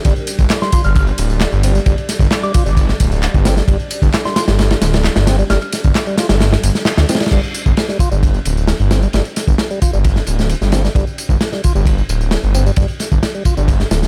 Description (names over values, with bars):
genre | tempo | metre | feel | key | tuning
breakbeat, breaks | 132 BPM | 4/4 | straight | unclear | A4 = 440 Hz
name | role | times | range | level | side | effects
warbly tape-like pad | sustained chords | 0.0-7.3 s | G3 to D5 | -31 LUFS | equal | none
tonewheel organ | riff | 0.0-13.6 s | G3 to F4 | -27 LUFS | equal | overdrive, chorus vibrato, slow rotary speaker, dub echo
crunchy breakbeat drum kit | drums | 0.0-14.1 s | crash cymbal, kick drum, ride cymbal, snare drum | -18 LUFS | equal | none
punchy analog drum machine | drums | 0.0-14.1 s | handclaps, ride cymbal, tambourine | -29 LUFS | equal | none
detuned saw bass | bass | 0.1-14.1 s | D1 to D2 | -17 LUFS | equal | none
soft synth bell | melody | 0.6-5.7 s | C6 to F6 | -27 LUFS | equal | chorus, old record sound, vintage 12-bit sampler grit, dub echo
room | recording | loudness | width
small room ambience | none | -15 LUFS | mono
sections
0.0-7.3 A section; 7.3-14.1 B section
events
drop 0.0-7.3; band accent 6.9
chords
0.0 G5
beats
| 0.05 0.50 0.95 1.41 | 1.86 2.32 2.77 3.23 | 3.68 4.14 4.59 5.05 | 5.50 5.96 6.41 6.86 | 7.32 7.77 8.23 8.68 | 9.14 9.59 10.05 10.50 | 10.96 11.41 11.86 12.32 | 12.77 13.23 13.68